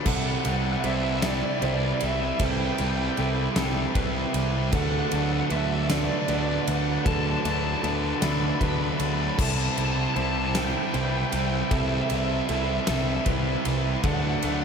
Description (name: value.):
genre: post-rock.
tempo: 52 BPM (dotted quarters).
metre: 6/8.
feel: straight.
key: C lydian.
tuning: A4 = 440 Hz.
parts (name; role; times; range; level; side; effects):
hand-pumped harmonium; sustained chords; 0.0-14.6 s; C4 to B5; -39 LUFS; right 2 dB; none.
felt-muted upright piano; arpeggios; 0.0-14.6 s; A4 to C5; -38 LUFS; right 4 dB; tape echo.
twangy electric guitar; arpeggios; 0.0-14.6 s; C3 to A4; -38 LUFS; left 2 dB; none.
tight distorted guitar; riff; 0.0-14.6 s; C3 to E4; -32 LUFS; left 10 dB; distortion.
lead guitar through a small cranked amp; melody; 0.1-14.6 s; D5 to B5; -31 LUFS; equal; overdrive, tape echo.
thick fuzz guitar; riff; 0.1-14.6 s; C3 to E4; -30 LUFS; right 8 dB; distortion.
fuzz picked electric bass; bass; 0.1-14.6 s; C2 to D2; -28 LUFS; left 1 dB; overdrive.
huge arena drum kit; drums; 0.1-14.6 s; crash cymbal, kick drum, ride cymbal, snare drum; -30 LUFS; equal; none.
room: moderate huge ambient reverb, RT60 4.8 s.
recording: dreamy mix soaked in reverb.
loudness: -23 LUFS.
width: side -6 dB against mid.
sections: 0.0-14.6 A section.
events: none.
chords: 0.1 C6; 4.7 D6; 9.4 C6; 14.1 D6.